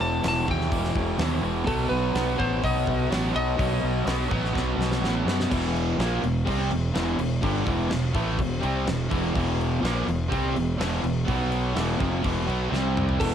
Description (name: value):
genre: hard rock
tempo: 125 BPM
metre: 4/4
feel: straight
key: E minor from 5.5 s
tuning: A4 = 444 Hz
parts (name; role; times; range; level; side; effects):
- lightly driven lead guitar; melody; 0.0-5.2, 13.2-13.3 s; A4 to A5; -30 LUFS; left 1 dB; tape echo
- cranked stack guitar; riff; 0.0-13.3 s; E2 to C4; -31 LUFS; left 9 dB; overdrive, cassette tape
- cranked stack guitar; riff; 0.0-13.3 s; E2 to C4; -31 LUFS; equal; overdrive, cassette tape
- crunchy overdriven guitar; riff; 0.0-13.3 s; E2 to C4; -30 LUFS; right 9 dB; cassette tape
- fuzz fingered electric bass; bass; 0.0-13.3 s; E1 to F#2; -27 LUFS; equal; overdrive
- gated 80s drum kit; drums; 0.2-13.3 s; crash cymbal, hi-hat, kick drum, snare drum, toms; -31 LUFS; equal; cassette tape
room: little or no reverb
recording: home recording on cassette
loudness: -22 LUFS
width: side -9 dB against mid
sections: 0.0-5.5 A section; 5.5-13.2 B section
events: drum fill 4.6-5.5, 12.7-13.2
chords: 0.0 Em; 1.7 B; 5.5 Em; 11.3 B5; 11.8 E5; 12.7 C5